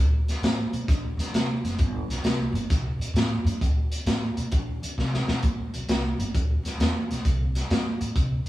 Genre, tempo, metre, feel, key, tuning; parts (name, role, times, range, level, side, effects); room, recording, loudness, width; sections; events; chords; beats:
electric blues shuffle; 132 BPM; 4/4; swing 67% on 8ths; G mixolydian; A4 = 440 Hz
upright bass; bass; 0.0-8.5 s; F#1 to D3; -27 LUFS; equal
crunchy breakbeat drum kit; drums; 0.3-8.5 s; hi-hat, kick drum, snare drum; -25 LUFS; equal
light reverb; band playing live in one room; -23 LUFS; side -16 dB against mid
0.0-5.4 A section; 5.4-8.5 B section
drum fill 5.0-5.4
0.43 0.88 1.34 | 1.79 2.24 2.70 3.15 | 3.61 4.06 4.52 4.97 | 5.42 5.88 6.33 6.79 | 7.24 7.70 8.15